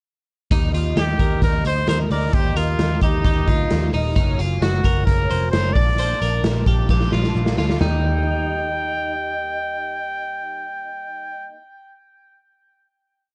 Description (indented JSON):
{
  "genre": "jangly indie pop",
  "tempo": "132 BPM",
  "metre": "4/4",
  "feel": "straight",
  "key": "Eb major",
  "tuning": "A4 = 439 Hz",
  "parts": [
    { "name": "picked twelve-string acoustic guitar", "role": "accompaniment", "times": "0.5-11.6 s", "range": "Gb2 to Eb4", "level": "-34 LUFS", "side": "equal", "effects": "ensemble chorus" },
    { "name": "twelve-string electric guitar", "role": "arpeggios", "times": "0.5-9.1 s", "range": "Eb4 to D5", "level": "-30 LUFS", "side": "equal", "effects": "none" },
    { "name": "vintage muted picked electric bass", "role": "bass", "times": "0.5-11.5 s", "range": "Eb1 to Eb2", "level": "-24 LUFS", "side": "equal", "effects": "none" },
    { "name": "raw garage drum kit", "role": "drums", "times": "0.5-7.9 s", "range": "china cymbal, hi-hat, kick drum, snare drum, toms", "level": "-23 LUFS", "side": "equal", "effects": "none" },
    { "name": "bright trumpet", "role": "melody", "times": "1.0-11.5 s", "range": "Eb4 to G5", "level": "-27 LUFS", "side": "equal", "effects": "none" }
  ],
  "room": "little or no reverb",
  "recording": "dark, warm production, nothing above 10.3 kHz",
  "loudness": "-20 LUFS",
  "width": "mono",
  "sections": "0.5-7.8 verse; 7.8-11.5 final chord",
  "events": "drum fill 6.9-7.8",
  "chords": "0.5 Eb; 4.2 Gb; 5.8 Bb; 7.8 Eb",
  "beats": "| 0.51 0.97 1.42 1.88 | 2.33 2.79 3.25 3.70 | 4.16 4.62 5.07 5.53 | 5.98 6.44 6.90 7.35 | 7.81 8.27 8.72 9.18 | 9.63 10.09 10.54 11.00"
}